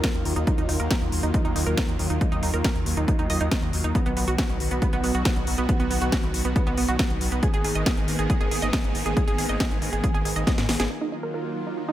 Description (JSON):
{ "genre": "uplifting trance", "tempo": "138 BPM", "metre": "4/4", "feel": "straight", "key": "Eb minor", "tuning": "A4 = 440 Hz", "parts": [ { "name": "supersaw pad", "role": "sustained chords", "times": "0.0-11.9 s", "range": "Eb3 to Ab4", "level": "-30 LUFS", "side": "equal", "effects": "phaser, sidechain pumping, low-pass filter" }, { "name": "wide unison pluck", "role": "arpeggios", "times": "0.0-11.9 s", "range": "Eb3 to Eb5", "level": "-30 LUFS", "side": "right 3 dB", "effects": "cassette tape, sidechain pumping, digital delay" }, { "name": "electronic kick drum", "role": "drums", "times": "0.0-10.6 s", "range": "none", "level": "-25 LUFS", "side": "equal", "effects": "none" }, { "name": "techno drum kit", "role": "drums", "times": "0.0-10.9 s", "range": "hi-hat, snare drum", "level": "-29 LUFS", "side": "left 1 dB", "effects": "sidechain pumping on hats, sidechain pumping on cymbals" }, { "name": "gritty driven synth bass", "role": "bass", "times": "0.1-10.9 s", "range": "Ab1 to Ab2", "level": "-27 LUFS", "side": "equal", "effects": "sidechain pumping" } ], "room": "digital ambience", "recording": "none", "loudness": "-21 LUFS", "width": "side -13 dB against mid", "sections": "0.0-10.9 A section; 10.9-11.9 B section", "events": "filter sweep on supersaw synth 0.0-10.9; drum fill 10.5-10.9; filter sweep on synth pluck 10.9-11.9", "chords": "0.0 Ebmadd9; 3.9 B; 7.4 Abmadd9; 10.9 Ebmadd9" }